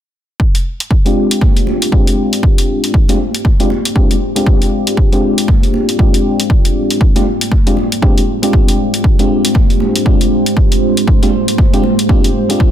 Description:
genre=deep house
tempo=118 BPM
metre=4/4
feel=swing 60% on 16ths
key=F dorian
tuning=A4 = 440 Hz
part: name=deep dark ambient pad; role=sustained chords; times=1.3-12.7 s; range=Ab3 to D5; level=-20 LUFS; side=right 3 dB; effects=chorus, built-in reverb, sidechain pumping
part: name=electronic kick drum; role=drums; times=0.4-12.7 s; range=none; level=-11 LUFS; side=equal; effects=none
part: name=electronic hi-hat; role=drums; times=0.5-12.6 s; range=none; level=-19 LUFS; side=left 1 dB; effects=none
part: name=mellow FM electric piano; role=stabs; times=1.1-12.7 s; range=Ab3 to G4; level=-15 LUFS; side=left 2 dB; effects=chorus, sidechain pumping, low-pass filter, tape echo
part: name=congas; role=percussion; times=1.4-12.0 s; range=none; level=-23 LUFS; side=right 4 dB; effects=none
room=light reverb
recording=dense, heavily limited modern master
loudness=-10 LUFS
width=side -10 dB against mid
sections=0.4-12.7 A section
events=filter sweep on FM electric piano 0.4-12.7; filter sweep on ambient pad 0.4-12.7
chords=0.4 Fm69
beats=| 0.40 0.91 1.41 1.92 | 2.43 2.94 3.45 3.96 | 4.46 4.97 5.48 5.99 | 6.50 7.01 7.52 8.03 | 8.53 9.04 9.55 10.06 | 10.57 11.07 11.58 12.09 | 12.60

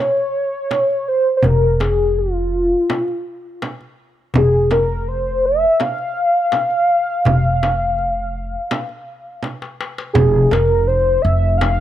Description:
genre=Arabic maqam ensemble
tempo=83 BPM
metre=4/4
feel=straight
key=F maqam nahawand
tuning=A4 = 440 Hz
part: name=warm velvety synth lead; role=melody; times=0.0-11.8 s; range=F4 to F5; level=-17 LUFS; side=equal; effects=chorus
part: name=darbuka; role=percussion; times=0.2-11.8 s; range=none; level=-22 LUFS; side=left 2 dB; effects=none
part: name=frame drum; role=percussion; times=0.7-11.8 s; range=none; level=-22 LUFS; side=right 3 dB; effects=none
part: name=upright bass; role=bass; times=1.4-11.8 s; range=F1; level=-20 LUFS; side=equal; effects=none
room=studio ambience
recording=dry, close 1970s-style studio recording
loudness=-15 LUFS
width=side -12 dB against mid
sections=0.0-10.2 A section; 10.2-11.8 B section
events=drum fill 9.4-10.2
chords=none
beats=0.71 | 1.44 2.17 2.89 3.62 | 4.34 5.07 5.80 6.52 | 7.25 7.98 8.70 9.43 | 10.16 10.88 11.61

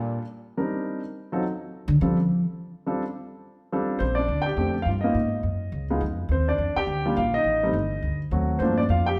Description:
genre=jazz piano trio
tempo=209 BPM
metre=4/4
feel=swing 60% on 8ths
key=unclear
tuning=A4 = 440 Hz
part: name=warm grand piano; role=melody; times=0.0-9.2 s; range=F3 to G5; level=-28 LUFS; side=equal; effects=none
part: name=upright bass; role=bass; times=0.0-9.2 s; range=G1 to F3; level=-28 LUFS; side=equal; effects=none
room=wet stone room reverb, RT60 1.5 s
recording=band playing live in one room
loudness=-26 LUFS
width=mono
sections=0.0-4.0 A section; 4.0-9.2 B section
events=upright bass solo 0.0-4.0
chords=0.0 Gm9; 0.6 Cm7; 1.1 N.C.; 1.7 Dmadd11; 4.0 Bb69; 5.2 Ab5; 5.7 Dbadd9; 6.3 Ebmaj9; 7.4 A7(b5, no3); 8.0 D7b9; 8.6 Gm9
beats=0.00 0.28 | 0.57 0.85 1.14 1.43 | 1.71 2.00 2.29 2.57 | 2.86 3.14 3.43 3.72 | 4.00 4.29 4.58 4.86 | 5.15 5.44 5.73 6.01 | 6.30 6.59 6.88 7.16 | 7.45 7.74 8.02 8.31 | 8.60 8.88 9.17

